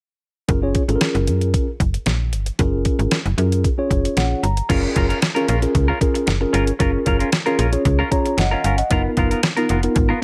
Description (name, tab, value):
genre	early-eighties boogie funk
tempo	114 BPM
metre	4/4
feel	straight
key	F# major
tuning	A4 = 439 Hz
part	mellow tine electric piano	accompaniment	0.5-10.2 s	B3 to A#5	-24 LUFS	equal	none
part	slap-like FM bass	bass	0.5-10.1 s	E#1 to F#2	-22 LUFS	equal	none
part	clean 12-bit digital drum machine	drums	0.5-10.1 s	crash cymbal, hi-hat, kick drum, snare drum	-24 LUFS	equal	none
part	semi-hollow electric guitar	riff	4.7-10.2 s	B3 to A#4	-27 LUFS	equal	subtle chorus
room	light reverb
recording	none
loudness	-19 LUFS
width	mono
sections	0.5-4.7 A section; 4.7-10.2 B section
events	tine electric piano fill 3.9-4.7, 7.9-8.9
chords	0.5 F#maj7; 8.9 C#13 (rootless)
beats	| 0.49 1.01 1.54 2.06 | 2.59 3.12 3.64 4.17 | 4.70 5.22 5.75 6.28 | 6.80 7.33 7.85 8.38 | 8.91 9.43 9.96